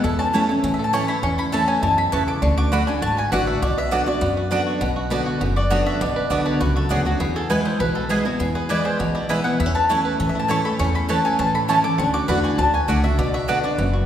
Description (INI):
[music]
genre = bluegrass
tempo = 201 BPM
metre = 4/4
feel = straight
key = B dorian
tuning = A4 = 440 Hz
[part]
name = bluegrass banjo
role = melody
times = 0.0-14.1 s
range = F#3 to B4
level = -28 LUFS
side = right 2 dB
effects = none
[part]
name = mandolin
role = melody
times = 0.0-14.1 s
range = F#4 to D6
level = -24 LUFS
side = left 2 dB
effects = none
[part]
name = picked steel-string acoustic guitar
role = accompaniment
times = 0.0-14.1 s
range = E2 to F#4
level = -23 LUFS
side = left 1 dB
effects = none
[part]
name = upright bass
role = bass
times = 0.0-14.1 s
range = F#1 to A2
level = -25 LUFS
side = equal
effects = none
[part]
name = mandolin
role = stabs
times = 0.3-13.6 s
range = A3 to A5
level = -26 LUFS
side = right 4 dB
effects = none
[sound]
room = wet scoring stage reverb, RT60 1.6 s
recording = recorded in a church or concert hall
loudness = -18 LUFS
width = side -10 dB against mid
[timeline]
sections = 0.0-4.8 A section; 4.8-14.1 A section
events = none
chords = 0.0 A/E; 2.4 D; 3.6 Bm; 7.2 E; 9.6 A/E; 12.0 D; 13.2 Bm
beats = | 0.04 0.34 0.64 0.94 | 1.23 1.53 1.83 2.13 | 2.43 2.73 3.02 3.32 | 3.62 3.92 4.22 4.52 | 4.81 5.11 5.41 5.71 | 6.01 6.31 6.61 6.91 | 7.21 7.50 7.80 8.10 | 8.40 8.70 9.00 9.30 | 9.60 9.90 10.20 10.49 | 10.79 11.09 11.39 11.69 | 11.99 12.29 12.59 12.89 | 13.19 13.48 13.78